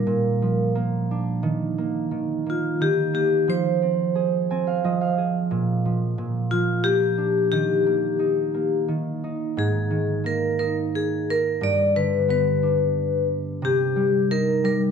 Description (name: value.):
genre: children's music, lullaby.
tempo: 89 BPM.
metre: 3/4.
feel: straight.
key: Eb major.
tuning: A4 = 443 Hz.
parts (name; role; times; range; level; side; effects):
vibraphone with medium hard mallets; melody; 0.0-14.8 s; F4 to D5; -22 LUFS; left 2 dB; none.
concert harp; accompaniment; 0.0-14.9 s; G2 to Ab5; -24 LUFS; right 2 dB; none.
room: wet recital hall reverb, RT60 1.5 s.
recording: none.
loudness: -20 LUFS.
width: side -6 dB against mid.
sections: 0.0-9.6 A section; 9.6-14.9 B section.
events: harp fill 4.1-5.5.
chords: 0.1 Bb; 1.4 Eb5; 3.5 Fm; 5.5 Bb5; 6.2 Bb; 7.5 Eb; 9.6 Absus2; 11.6 G; 13.6 Cm.